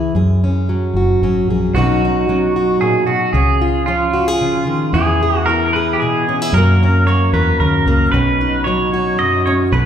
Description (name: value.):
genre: acoustic folk duo or small band.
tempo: 113 BPM.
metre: 3/4.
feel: straight.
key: B major.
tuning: A4 = 439 Hz.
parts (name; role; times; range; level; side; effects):
fingerpicked plugged-in steel-string acoustic guitar; accompaniment; 0.0-9.9 s; F#2 to A#4; -17 LUFS; left 1 dB; none.
fingered electric bass; bass; 0.0-9.9 s; F#1 to F#2; -17 LUFS; equal; none.
pedal steel guitar; second line; 1.7-9.9 s; E#4 to D#5; -17 LUFS; right 2 dB; none.
room: wet recital hall reverb, RT60 1.4 s.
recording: recorded in a church or concert hall.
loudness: -13 LUFS.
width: side -9 dB against mid.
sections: 0.0-1.7 A section; 1.7-9.9 B section.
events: none.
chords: 0.1 F#add9; 1.7 Badd9; 3.3 C#; 4.9 E; 6.5 F#; 8.1 Badd9.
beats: | 0.14 0.68 1.21 | 1.74 2.28 2.81 | 3.34 3.87 4.40 | 4.93 5.47 6.00 | 6.53 7.06 7.59 | 8.12 8.65 9.19 | 9.72.